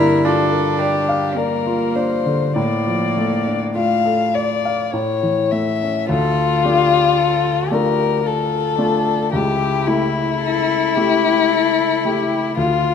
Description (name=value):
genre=classical, slow romantic movement for piano trio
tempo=48-57 BPM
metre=3/4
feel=rubato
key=D minor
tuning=A4 = 440 Hz
part: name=dark violin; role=melody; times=0.0-12.9 s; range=E4 to F5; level=-18 LUFS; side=left 8 dB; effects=none
part: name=rich cello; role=second line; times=0.0-12.9 s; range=A3 to A4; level=-24 LUFS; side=right 3 dB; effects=none
part: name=warm baby grand piano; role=accompaniment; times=0.0-12.9 s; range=C#2 to F5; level=-20 LUFS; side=equal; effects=none
room=moderate scoring stage reverb, RT60 1.8 s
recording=none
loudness=-16 LUFS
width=side -7 dB against mid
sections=0.0-6.1 A section; 6.1-12.9 B section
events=none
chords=0.0 Gm7; 2.6 Dm/A; 4.9 A; 6.1 Dm; 9.3 A7/C#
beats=0.25 1.37 | 2.56 3.76 4.92 | 6.09 7.19 8.25 | 9.32 10.43 11.50 | 12.57